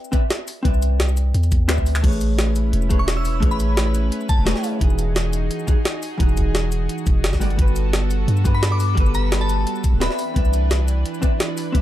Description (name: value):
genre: liquid drum and bass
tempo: 173 BPM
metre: 4/4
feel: straight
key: unclear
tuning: A4 = 441 Hz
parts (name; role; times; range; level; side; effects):
- vintage hollow-body jazz guitar; accompaniment; 0.0-11.8 s; E3 to E5; -26 LUFS; equal; ping-pong delay
- jungle sampler-style drum kit; drums; 0.0-11.8 s; crash cymbal, handclaps, hi-hat, shaker, snare drum; -25 LUFS; equal; none
- electronic kick drum; drums; 0.1-11.8 s; none; -18 LUFS; equal; none
- long sustained 808-style bass; bass; 0.7-11.8 s; D1 to G2; -20 LUFS; equal; none
- lush unison pad; sustained chords; 2.0-11.8 s; E3 to B4; -30 LUFS; right 1 dB; chorus
- glassy synth bell; melody; 3.0-4.6, 8.5-10.2 s; A5 to E6; -28 LUFS; left 2 dB; chorus, phaser, digital delay
room: little or no reverb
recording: dark, warm production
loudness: -17 LUFS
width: side -13 dB against mid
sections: 0.0-11.8 A section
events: drum fill 1.7-2.0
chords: 0.0 Cmaj9; 2.0 Amaj9; 4.8 Emaj9; 7.4 Gmaj9; 10.2 Cmaj9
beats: 0.30 | 0.65 1.00 1.34 1.69 | 2.04 2.38 2.73 3.08 | 3.42 3.77 4.12 4.47 | 4.81 5.16 5.51 5.85 | 6.20 6.55 6.89 7.24 | 7.59 7.93 8.28 8.63 | 8.97 9.32 9.67 10.02 | 10.36 10.71 11.05 11.40 | 11.75